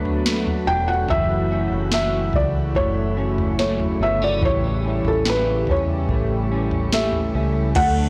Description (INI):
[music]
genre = dream pop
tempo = 72 BPM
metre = 4/4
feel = straight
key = unclear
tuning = A4 = 440 Hz
[part]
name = felt-muted upright piano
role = melody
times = 0.0-8.1 s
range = A4 to G5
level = -26 LUFS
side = equal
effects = delay
[part]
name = hollow soft pad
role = sustained chords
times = 0.0-8.1 s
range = C#3 to A4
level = -29 LUFS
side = equal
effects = chorus
[part]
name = electric guitar at the edge of break-up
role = arpeggios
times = 0.0-8.1 s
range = E3 to G4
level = -29 LUFS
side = equal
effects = ensemble chorus, delay
[part]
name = vintage muted fingered electric bass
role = bass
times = 0.0-8.1 s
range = E1 to E2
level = -27 LUFS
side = equal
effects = transformer saturation
[part]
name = soft vintage rhythm box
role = drums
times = 0.1-8.0 s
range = crash cymbal, kick drum, snare drum, toms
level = -28 LUFS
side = equal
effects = overdrive
[sound]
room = light reverb, digital ambience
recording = blown-out, overdriven recording, overdrive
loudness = -21 LUFS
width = mono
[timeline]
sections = 0.0-7.8 A section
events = none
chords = 0.0 Bm7; 1.1 F#m7; 4.4 A7